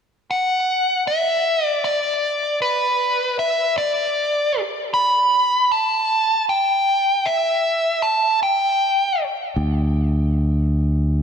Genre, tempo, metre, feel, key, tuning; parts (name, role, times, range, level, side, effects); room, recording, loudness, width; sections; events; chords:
post-rock; 52 BPM (dotted quarters); 6/8; straight; A4 = 441 Hz
nasal lead guitar with a parked wah; melody; 0.3-9.3 s; B4 to B5; -17 LUFS; equal; overdrive, ping-pong delay
modern bright fingered electric bass; bass; 9.6-11.2 s; D2; -17 LUFS; equal
wet plate reverb, RT60 3.0 s; dreamy mix soaked in reverb; -17 LUFS; side -7 dB against mid
0.3-11.2 A section